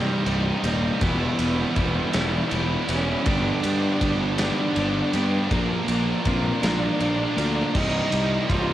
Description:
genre	quiet-loud alternative rock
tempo	54 BPM (dotted quarters)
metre	6/8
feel	straight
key	unclear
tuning	A4 = 440 Hz
part	dark cello	melody	0.0-8.7 s	G3 to F4	-28 LUFS	right 2 dB	cassette tape
part	fuzz guitar	riff	0.0-8.7 s	C2 to Bb4	-29 LUFS	left 8 dB	distortion, cassette tape
part	high-gain distorted guitar	riff	0.0-8.7 s	C2 to Bb4	-31 LUFS	equal	distortion, cassette tape
part	sludgy distorted guitar	riff	0.0-8.7 s	C2 to Bb4	-29 LUFS	right 7 dB	overdrive, cassette tape
part	fuzz fingered electric bass	bass	0.3-8.7 s	C1 to G2	-26 LUFS	equal	overdrive
part	big rock drum kit	drums	0.3-8.7 s	crash cymbal, kick drum, ride cymbal, snare drum	-28 LUFS	equal	cassette tape
room	little or no reverb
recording	home recording on cassette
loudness	-20 LUFS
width	side -13 dB against mid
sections	0.0-8.7 A section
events	none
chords	0.0 Cm; 1.0 Em; 3.3 G; 5.5 Bb; 7.8 Cm

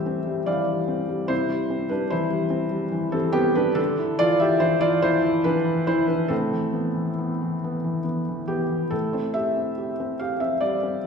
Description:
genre	neoclassical minimalist piano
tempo	71 BPM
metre	3/4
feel	rubato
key	A minor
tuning	A4 = 439 Hz
part	felt-muted upright piano	solo	0.0-11.1 s	A2 to F5	-21 LUFS	equal	none
room	wet recital hall reverb, RT60 1.3 s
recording	recorded in a church or concert hall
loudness	-21 LUFS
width	side -6 dB against mid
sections	0.0-8.9 A section; 8.9-11.1 A section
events	none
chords	0.0 Am7; 1.3 C; 3.8 Dsus2; 6.3 Amadd9; 8.9 Am7

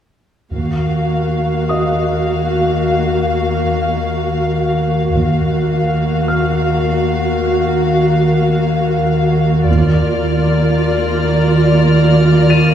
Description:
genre	cinematic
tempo	53 BPM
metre	4/4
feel	straight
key	Eb harmonic minor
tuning	A4 = 440 Hz
part	warm studio viola section	accompaniment	0.5-12.7 s	Bb3 to Gb4	-19 LUFS	right 1 dB	none
part	glass harmonica	sustained chords	0.5-12.7 s	F4 to F5	-22 LUFS	left 1 dB	none
part	warm chamber double bass section	bass	0.5-10.8 s	Eb2	-20 LUFS	right 2 dB	none
part	warm studio cello section	bass	0.5-12.7 s	Eb2	-16 LUFS	right 2 dB	none
part	pure sine sub bass	drone	0.5-12.7 s	Eb2	-22 LUFS	left 4 dB	none
part	warm studio violin section	melody	0.6-12.7 s	D5 to F5	-22 LUFS	left 4 dB	none
part	warm grand piano	texture	1.7-12.7 s	Eb5 to Eb7	-27 LUFS	left 2 dB	none
part	clear studio violin section	texture	9.7-12.7 s	Bb5 to F6	-27 LUFS	left 4 dB	none
room	wet scoring stage reverb, RT60 1.6 s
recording	heard from further back in the room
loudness	-13 LUFS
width	side -9 dB against mid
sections	0.5-12.7 A section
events	none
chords	0.5 Ebmadd9; 9.7 Bb/Eb

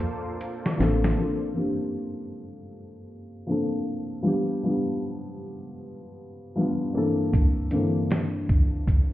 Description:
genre	lo-fi hip hop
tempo	78 BPM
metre	4/4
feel	swing 63% on 16ths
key	Bb major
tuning	A4 = 440 Hz
part	felt-muted upright piano	accompaniment	0.0-9.1 s	G2 to A4	-26 LUFS	left 1 dB	cassette tape, low-pass filter
part	lush unison pad	sustained chords	0.0-1.2 s	Bb3 to D5	-35 LUFS	right 2 dB	chorus, phaser, low-pass filter
part	lo-fi sampler-style drum kit	drums	0.0-1.2, 7.3-9.1 s	hi-hat, kick drum, snare drum	-21 LUFS	equal	vintage 12-bit sampler grit
part	egg shaker and woodblock	percussion	0.0-1.0 s	none	-42 LUFS	right 2 dB	none
part	deep dub fingered electric bass	bass	0.8-1.1 s	A1	-25 LUFS	equal	none
room	moderate booth ambience, RT60 0.2 s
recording	heard muffled through a wall, stone room reverb, EQ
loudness	-23 LUFS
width	side -15 dB against mid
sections	0.0-1.2 A section; 1.2-9.1 B section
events	drum fill 0.0-1.2; filter sweep on felt piano 1.2-9.1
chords	0.0 Bbmaj9; 4.3 G7; 7.0 C13/G

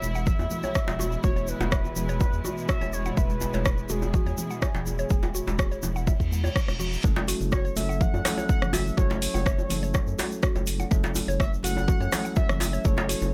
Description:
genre	afro house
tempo	124 BPM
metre	4/4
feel	straight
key	F# minor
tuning	A4 = 435 Hz
part	expressive synth lead	melody	0.0-13.3 s	G#4 to F#5	-37 LUFS	equal	analog chorus, delay
part	dark studio string section	sustained chords	0.0-7.0 s	B2 to E4	-38 LUFS	equal	sidechain pumping
part	round analog bass	bass	0.0-13.3 s	E1 to F#2	-32 LUFS	equal	sidechain pumping
part	congas	percussion	0.0-13.3 s	none	-39 LUFS	equal	none
part	djembe	percussion	0.0-13.3 s	none	-37 LUFS	equal	none
part	egg shaker	percussion	0.0-13.3 s	none	-42 LUFS	equal	none
part	mallet-like synth pluck	arpeggios	0.2-13.2 s	F#4 to F#5	-39 LUFS	equal	chorus, phaser, sidechain pumping, delay
part	electronic kick drum	drums	0.3-13.0 s	none	-27 LUFS	equal	overdrive, small room ambience
part	afro-pop drum kit	drums	0.8-13.2 s	hi-hat, rim click	-33 LUFS	equal	small room ambience
part	reverse cymbal	sound effects	6.2-7.0 s	none	-39 LUFS	equal	none
part	bell-like tine electric piano	stabs	7.0-13.3 s	F#3 to A4	-36 LUFS	equal	sidechain pumping
room	little or no reverb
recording	none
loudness	-26 LUFS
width	mono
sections	0.0-7.0 A section; 7.0-13.3 B section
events	reverse cymbal 6.2-7.0; drop 7.0-13.3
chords	0.0 E; 7.0 F#m7

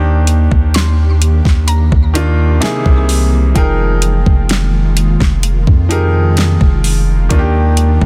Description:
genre	contemporary R&B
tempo	64 BPM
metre	4/4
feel	straight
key	Eb major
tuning	A4 = 440 Hz
part	clear grand piano	accompaniment	0.0-8.1 s	C3 to G5	-21 LUFS	equal	none
part	glassy FM pad	sustained chords	0.7-8.1 s	C3 to G4	-25 LUFS	equal	ensemble chorus, built-in reverb, sidechain pumping
part	long sustained 808-style bass	bass	0.0-8.1 s	F1 to F2	-14 LUFS	equal	none
part	smooth R&B drum kit	drums	0.3-8.1 s	hi-hat, kick drum, snare drum	-16 LUFS	equal	none
part	mallet-like synth pluck	texture	0.7-4.0 s	G#5 to C6	-30 LUFS	equal	chorus, digital delay
room	little or no reverb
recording	dense, heavily limited modern master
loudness	-12 LUFS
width	mono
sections	0.0-8.1 A section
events	none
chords	0.0 Ebmaj7; 2.6 C7alt; 3.6 Fm11; 7.3 Ebmaj7

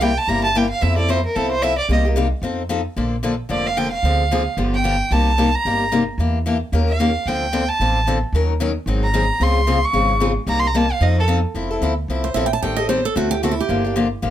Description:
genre	acoustic string swing (jazz manouche)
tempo	224 BPM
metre	4/4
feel	swing 58% on 8ths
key	Bb major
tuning	A4 = 440 Hz
part	warm violin	melody	0.0-11.3 s	A4 to Db6	-21 LUFS	right 2 dB	none
part	picked steel-string acoustic guitar	accompaniment	0.0-14.3 s	C3 to Bb4	-21 LUFS	left 3 dB	none
part	upright bass	bass	0.0-14.3 s	F1 to F2	-21 LUFS	right 1 dB	none
part	picked steel-string acoustic guitar	second line	12.2-14.0 s	E4 to A5	-21 LUFS	right 5 dB	none
room	light reverb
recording	none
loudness	-17 LUFS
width	side -11 dB against mid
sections	0.0-3.0 A section; 3.0-11.5 A section; 11.5-14.3 A section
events	violin solo 0.0-11.5; steel-string acoustic guitar solo 11.5-14.3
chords	0.0 C7; 0.8 Fmaj7; 1.9 Cm7; 2.4 F7; 3.0 Bbmaj7; 4.0 Dm7b5; 4.6 G7; 5.1 Cm7; 6.2 Em7b5; 6.7 Eb9; 7.3 Dm7; 8.3 Ebm7; 8.9 Ab7; 9.4 Dbmaj7; 10.5 Cm7; 11.0 F7; 11.5 Fmaj7; 12.6 Am7b5; 13.2 D7; 13.7 Gm7

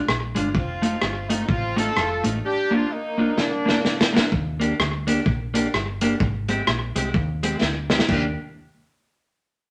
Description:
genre	ska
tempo	127 BPM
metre	4/4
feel	swing 60% on 8ths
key	Eb major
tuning	A4 = 439 Hz
part	deep dub fingered electric bass	bass	0.1-8.4 s	F1 to Eb2	-31 LUFS	equal	none
part	vintage drum kit	drums	0.1-8.2 s	crash cymbal, hi-hat, kick drum, rim click, snare drum	-25 LUFS	equal	slapback echo
part	clean electric guitar	accompaniment	0.3-8.3 s	Ab3 to G4	-26 LUFS	equal	slapback echo
part	warm horn section	melody	0.6-4.1 s	Bb3 to A4	-28 LUFS	equal	none
room	moderate studio reverb, RT60 0.8 s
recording	none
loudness	-23 LUFS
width	mono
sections	0.0-4.3 A section; 4.3-8.1 B section; 8.1-9.7 C section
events	drum fill 3.4-4.3, 7.6-8.1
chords	0.0 Bb7; 0.5 F7; 2.4 Bb; 4.3 Ebmaj7; 6.2 Abmaj7; 8.1 Ebmaj7

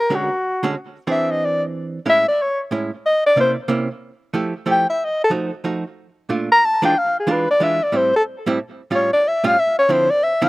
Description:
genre	jazz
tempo	184 BPM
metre	3/4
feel	swing 63% on 8ths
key	F major from 4.0 s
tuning	A4 = 440 Hz
part	breathy soprano saxophone	melody	0.0-10.5 s	F#4 to Bb5	-16 LUFS	left 1 dB	none
part	archtop guitar, miked and amplified	accompaniment	0.1-10.5 s	A2 to G#4	-22 LUFS	right 2 dB	none
room	little or no reverb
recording	recorded outdoors, with no room sound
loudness	-16 LUFS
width	side -20 dB against mid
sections	0.0-4.0 A section; 4.0-10.5 A section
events	soprano saxophone solo 0.0-10.5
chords	0.1 Dmaj7#11; 1.1 Eaug7; 2.1 Amaj7; 3.0 C7b9; 4.0 Fmaj9; 5.0 F7b9; 6.0 Bbmaj7; 7.0 E7b9; 7.9 Am7; 8.9 A7b13; 9.9 Dm9

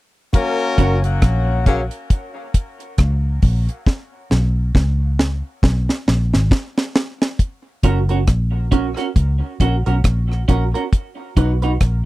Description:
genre	dub reggae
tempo	68 BPM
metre	4/4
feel	swing 58% on 16ths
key	F# major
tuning	A4 = 440 Hz
part	warm horn section	second line	0.3-1.8 s	C#3 to A#4	-23 LUFS	left 3 dB	dub echo
part	deep reggae drum kit	drums	0.3-12.0 s	hi-hat, kick drum, rim click, snare drum	-16 LUFS	equal	none
part	congas	percussion	0.3-0.6 s	none	-29 LUFS	right 3 dB	dub echo
part	clean electric guitar	accompaniment	0.8-0.9, 7.8-11.7 s	C#4 to B4	-23 LUFS	right 4 dB	wide subtle chorus, dub echo
part	vintage muted fingered electric bass	bass	0.8-12.1 s	F#1 to C#2	-17 LUFS	equal	none
room	little or no reverb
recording	dry, close 1970s-style studio recording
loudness	-16 LUFS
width	side -18 dB against mid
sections	0.3-7.4 A section; 7.4-12.1 B section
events	part muted 0.3-7.4; drum fill 3.9-7.4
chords	0.3 F#; 3.9 G#madd11 (rootless); 7.4 F#; 10.9 B

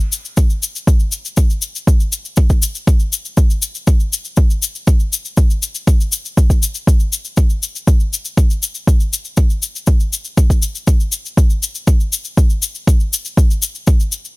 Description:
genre	house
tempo	120 BPM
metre	4/4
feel	straight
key	none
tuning	none
part	tube shaker	percussion	0.0-14.3 s	none	-21 LUFS	left 4 dB	none
part	electronic kick drum	drums	0.4-14.0 s	none	-12 LUFS	equal	none
room	little or no reverb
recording	none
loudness	-13 LUFS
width	side -24 dB against mid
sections	0.0-14.4 A section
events	none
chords	none

